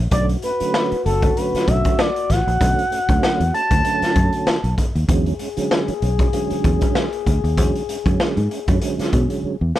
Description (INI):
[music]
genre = funk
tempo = 97 BPM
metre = 4/4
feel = swing 56% on 16ths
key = B dorian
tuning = A4 = 440 Hz
[part]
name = fingered electric bass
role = bass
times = 0.0-9.7 s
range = F#1 to B2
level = -20 LUFS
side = equal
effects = none
[part]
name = expressive synth lead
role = melody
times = 0.1-4.7 s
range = A4 to A5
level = -21 LUFS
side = equal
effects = chorus
[part]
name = breathy trombone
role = second line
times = 0.1-9.7 s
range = F#4 to G#4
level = -28 LUFS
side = left 14 dB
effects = none
[part]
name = mellow tonewheel organ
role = stabs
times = 0.1-9.8 s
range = D3 to C#4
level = -24 LUFS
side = right 6 dB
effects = chorus vibrato, slow rotary speaker
[part]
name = raw garage drum kit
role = drums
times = 0.1-9.8 s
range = hi-hat, kick drum, snare drum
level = -21 LUFS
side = equal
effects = none
[sound]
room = little or no reverb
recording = none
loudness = -16 LUFS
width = side -14 dB against mid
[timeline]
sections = 0.0-9.8 A section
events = drum fill 9.4-9.8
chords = 0.1 Bm9; 5.1 E13